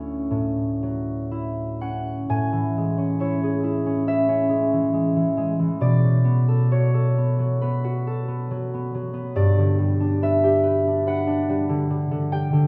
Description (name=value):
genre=classical, solo harp piece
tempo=58-72 BPM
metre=4/4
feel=rubato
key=unclear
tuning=A4 = 442 Hz
part: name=concert harp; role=solo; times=0.0-12.7 s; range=D2 to G#5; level=-22 LUFS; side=equal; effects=none
room=wet recital hall reverb, RT60 1.4 s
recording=heard from further back in the room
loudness=-22 LUFS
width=mono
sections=0.0-2.3 A section; 2.3-12.7 B section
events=none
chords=0.0 Dmaj9; 2.3 Amaj7; 5.8 Bm7; 9.4 Gmaj7